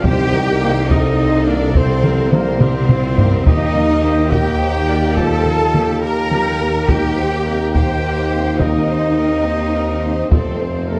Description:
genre	cinematic, epic orchestral film score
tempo	70 BPM (dotted quarters)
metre	12/8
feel	straight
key	C dorian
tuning	A4 = 439 Hz
part	warm symphonic violin section	melody	0.0-11.0 s	G4 to C5	-31 LUFS	equal	none
part	warm symphonic violin section	second line	0.0-11.0 s	Bb4 to Bb5	-31 LUFS	equal	none
part	rich symphonic viola section	accompaniment	0.0-11.0 s	F4 to Eb5	-30 LUFS	equal	none
part	warm French horn section	sustained chords	0.0-11.0 s	G3 to G4	-29 LUFS	equal	none
part	bright trumpet section	stabs	0.0-11.0 s	Bb4 to Bb5	-27 LUFS	equal	none
part	dark studio double bass section	bass	0.0-11.0 s	C2 to F2	-23 LUFS	equal	none
part	rich symphonic cello section	bass	0.0-11.0 s	Bb3 to Bb4	-23 LUFS	equal	none
part	taiko ensemble	drums	0.0-10.8 s	none	-20 LUFS	equal	none
part	timpani	percussion	0.0-0.9 s	C3	-27 LUFS	equal	none
part	clear tuba	bass	0.1-11.0 s	F1 to Eb2	-24 LUFS	equal	none
part	mellow trombone section	sustained chords	0.6-11.0 s	C3 to Bb3	-31 LUFS	equal	none
room	moderate scoring stage reverb, RT60 1.8 s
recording	dark, warm production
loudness	-16 LUFS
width	mono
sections	0.0-11.0 A section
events	drum fill 2.6-3.5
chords	0.0 Cm7; 3.5 Eb; 6.9 Cm7/Eb; 10.3 F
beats	| 0.05 0.90 1.75 2.61 | 3.46 4.32 5.17 6.03 | 6.88 7.74 8.59 9.45 | 10.30

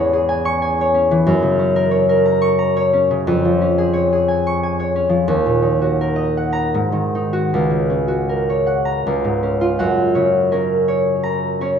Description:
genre	classical, solo harp piece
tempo	77-93 BPM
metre	3/4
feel	rubato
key	F# major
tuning	A4 = 440 Hz
part	concert harp	solo	0.0-11.8 s	C#2 to E6	-15 LUFS	equal	none
room	wet recital hall reverb, RT60 1.6 s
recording	none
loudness	-15 LUFS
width	side -7 dB against mid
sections	0.0-9.8 A section; 9.8-11.8 B section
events	none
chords	0.0 C#m/E; 1.3 F#; 3.3 C#/E#; 5.3 D#m; 6.7 G#5; 7.5 F#/C#; 9.0 C#; 9.8 F#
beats	0.61 | 1.27 1.92 2.60 | 3.27 3.95 4.63 | 5.30 6.01 6.73 | 7.49 8.27 9.04 | 9.79 10.51 11.22

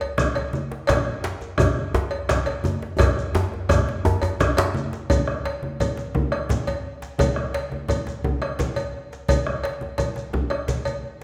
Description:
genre	west african traditional, West African drum ensemble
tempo	114 BPM (dotted quarters)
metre	12/8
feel	straight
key	none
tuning	none
part	cowbell	percussion	0.0-11.0 s	none	-31 LUFS	equal	none
part	bombo	percussion	0.2-10.8 s	none	-29 LUFS	equal	none
part	congas	percussion	0.2-11.0 s	none	-32 LUFS	equal	none
part	shekere	percussion	0.2-11.2 s	none	-35 LUFS	equal	none
part	djembe	percussion	0.4-11.2 s	none	-33 LUFS	equal	none
part	djembe	percussion	0.9-4.7 s	none	-27 LUFS	equal	none
room	wet recital hall reverb, RT60 1.5 s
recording	none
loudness	-24 LUFS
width	mono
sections	0.0-5.1 A section; 5.1-11.2 B section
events	drum fill 3.0-5.1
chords	none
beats	0.36 | 0.89 1.42 1.95 2.47 | 3.00 3.52 4.05 4.57 | 5.10 5.62 6.15 6.67 | 7.20 7.72 8.24 8.77 | 9.29 9.81 10.34 10.86

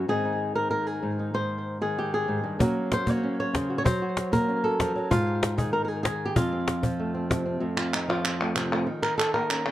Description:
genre	flamenco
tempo	191 BPM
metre	4/4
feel	straight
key	unclear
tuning	A4 = 440 Hz
part	flamenco guitar	melody	0.0-9.7 s	F2 to Db5	-25 LUFS	equal	tape echo
part	cajon	percussion	2.6-7.6 s	none	-26 LUFS	left 1 dB	none
part	palmas hand claps	percussion	7.8-9.7 s	none	-28 LUFS	right 1 dB	none
room	light reverb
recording	dark, warm production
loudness	-24 LUFS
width	side -13 dB against mid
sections	0.0-7.6 A section; 7.6-9.7 B section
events	nylon-string guitar solo 7.6-9.7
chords	0.1 Ab; 2.6 Gb; 5.1 Ab5; 6.4 F; 8.9 Eb5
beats	| 0.09 0.40 0.72 1.03 | 1.34 1.66 1.97 2.29 | 2.60 2.91 3.23 3.54 | 3.85 4.17 4.48 4.80 | 5.11 5.42 5.74 6.05 | 6.37 6.68 6.99 7.31 | 7.62 7.93 8.25 8.56 | 8.88 9.19 9.51

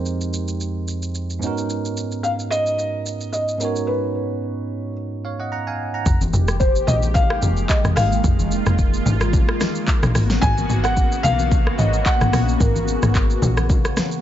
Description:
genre	amapiano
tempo	110 BPM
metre	4/4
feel	swing 55% on 16ths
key	unclear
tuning	A4 = 440 Hz
part	felt-muted upright piano	melody	0.0-14.2 s	Bb4 to Ab5	-24 LUFS	left 1 dB	low-pass filter, tape echo
part	bell-like tine electric piano	accompaniment	0.0-6.2 s	F2 to Bb5	-25 LUFS	right 3 dB	wide subtle chorus, low-pass filter
part	deep house drum kit	drums	0.1-14.2 s	handclaps, hi-hat, kick drum, rim click, shaker, snare drum	-21 LUFS	equal	none
part	lush unison pad	sustained chords	6.1-14.2 s	Db3 to G4	-25 LUFS	equal	chorus, phaser, sidechain pumping
part	woody log drum bass	bass	6.1-13.9 s	F1 to Cb2	-20 LUFS	equal	none
part	congas	percussion	6.2-14.1 s	none	-28 LUFS	left 2 dB	none
room	little or no reverb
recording	nothing above 7.6 kHz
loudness	-18 LUFS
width	side -11 dB against mid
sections	0.0-6.1 A section; 6.1-14.2 B section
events	filter sweep 0.0-6.1; break 3.9-6.1; drop 6.1-14.2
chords	0.0 Fm11; 1.4 Abm11; 6.1 Fm11; 10.2 Abm11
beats	0.06 0.61 1.15 | 1.70 2.24 2.79 3.33 | 3.88 4.42 4.97 5.51 | 6.06 6.61 7.15 7.70 | 8.24 8.79 9.33 9.88 | 10.42 10.97 11.52 12.06 | 12.61 13.15 13.70

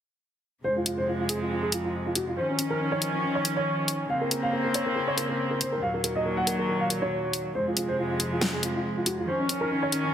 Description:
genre	heavy wobble dubstep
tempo	139 BPM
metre	4/4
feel	swing 54% on 16ths, half-time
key	F phrygian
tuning	A4 = 442 Hz
part	dark baby grand piano	melody	0.6-10.1 s	Db4 to Gb5	-29 LUFS	equal	tape echo
part	rich studio string section	sustained chords	0.6-10.1 s	Eb2 to Db4	-28 LUFS	equal	none
part	dubstep drum kit	drums	0.9-10.0 s	hi-hat, snare drum	-27 LUFS	left 1 dB	none
room	moderate plate reverb, RT60 2.0 s, studio ambience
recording	heavily compressed radio sound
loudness	-25 LUFS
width	side -9 dB against mid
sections	0.6-10.1 A section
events	none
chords	0.6 Fm; 2.4 Dbadd9; 4.1 Bbmadd9; 5.8 Ebm; 7.5 Fm; 9.3 Dbadd9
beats	| 0.64 1.07 1.51 1.94 | 2.37 2.80 3.23 3.67 | 4.10 4.53 4.96 5.39 | 5.82 6.25 6.69 7.12 | 7.55 7.98 8.41 8.85 | 9.28 9.71

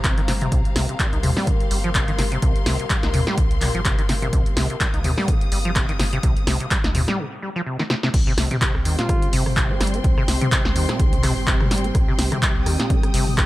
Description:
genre	acid house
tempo	126 BPM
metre	4/4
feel	swing 56% on 16ths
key	C minor pentatonic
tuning	A4 = 440 Hz
part	dark analog pad	sustained chords	0.0-13.5 s	G3 to C5	-32 LUFS	left 1 dB	chorus, sidechain pumping
part	acid bass, saw	riff	0.0-13.5 s	Bb2 to Eb4	-26 LUFS	equal	lush chorus, cassette tape, digital delay
part	round analog bass	bass	0.0-13.5 s	G1 to Eb2	-25 LUFS	equal	tube saturation, sidechain pumping
part	electronic kick drum	drums	0.0-13.5 s	none	-21 LUFS	equal	none
part	punchy analog drum machine	drums	0.0-13.5 s	crash cymbal, handclaps, hi-hat, rim click, snare drum, toms	-24 LUFS	equal	none
part	warm studio string section	texture	0.0-13.5 s	C4 to Eb6	-32 LUFS	left 1 dB	sidechain pumping
part	trumpet with bucket mute	melody	9.0-9.3 s	F4	-31 LUFS	equal	tape echo
room	light reverb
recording	none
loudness	-18 LUFS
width	side -17 dB against mid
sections	0.0-8.1 A section; 8.1-13.5 B section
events	break 7.2-8.1; drum fill 7.8-8.1; drop 8.1-13.5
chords	0.0 C5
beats	0.04 | 0.52 1.00 1.47 1.95 | 2.42 2.90 3.38 3.85 | 4.33 4.80 5.28 5.76 | 6.23 6.71 7.19 7.66 | 8.14 8.62 9.09 9.57 | 10.04 10.52 11.00 11.47 | 11.95 12.42 12.90 13.38

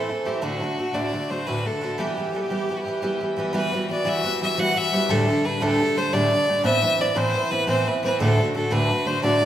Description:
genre	celtic folk, Celtic slip jig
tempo	116 BPM (dotted quarters)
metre	9/8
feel	straight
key	E minor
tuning	A4 = 438 Hz
part	bright fiddle	melody	0.0-9.5 s	F#4 to F#5	-24 LUFS	left 1 dB	none
part	picked twelve-string acoustic guitar	accompaniment	0.0-9.5 s	D2 to G4	-22 LUFS	right 1 dB	none
room	wet recital hall reverb, RT60 1.6 s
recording	none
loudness	-20 LUFS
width	side -11 dB against mid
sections	0.0-3.5 A section; 3.5-9.5 B section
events	none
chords	0.4 D; 2.0 Em; 3.5 Emadd9; 5.1 Dsus4; 6.6 Amadd9; 8.2 D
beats	| 0.42 0.94 1.47 | 1.99 2.50 3.02 | 3.54 4.06 4.58 | 5.09 5.61 6.13 | 6.65 7.16 7.68 | 8.20 8.71 9.23

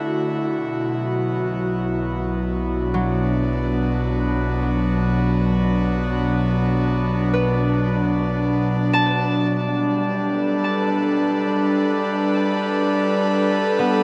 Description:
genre	ambient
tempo	53 BPM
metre	4/4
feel	straight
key	unclear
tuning	A4 = 438 Hz
part	airy breathy pad	sustained chords	0.0-14.0 s	B2 to B4	-21 LUFS	equal	chorus
part	concert harp	arpeggios	0.0-14.0 s	F#3 to A5	-30 LUFS	equal	delay
part	deep rumbling drone	bass	1.7-9.5 s	B1 to D2	-32 LUFS	equal	built-in reverb
room	wet huge ambient reverb, RT60 7.7 s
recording	cassette tape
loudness	-21 LUFS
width	mono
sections	0.0-9.5 A section; 9.5-14.0 B section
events	none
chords	0.0 D7; 0.5 Bm; 9.5 Gadd9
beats	| 0.54 1.65 2.75 3.87 | 4.99 6.11 7.23 8.38 | 9.52 10.66 11.79 12.93

